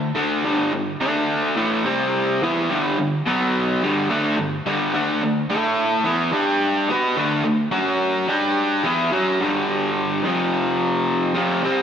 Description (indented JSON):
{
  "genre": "rock",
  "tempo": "107 BPM",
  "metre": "4/4",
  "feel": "straight",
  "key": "G major",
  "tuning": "A4 = 445 Hz",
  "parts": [
    { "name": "raw garage guitar", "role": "solo", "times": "0.0-11.8 s", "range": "F2 to B4", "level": "-18 LUFS", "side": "equal", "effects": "overdrive, slapback echo" }
  ],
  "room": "wet lush hall reverb, RT60 2.8 s",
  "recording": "big arena sound",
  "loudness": "-18 LUFS",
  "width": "side -8 dB against mid",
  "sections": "0.0-9.4 A section; 9.4-11.8 B section",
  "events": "none",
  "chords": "0.4 G5; 1.0 D5; 1.6 A5; 1.8 C5; 2.4 G; 3.2 B5; 3.8 G5; 4.9 D5; 5.5 A5; 6.1 E5; 6.3 G5; 6.9 D5; 7.7 F#5; 8.3 G5; 8.9 Esus2; 9.4 G5; 10.3 F5"
}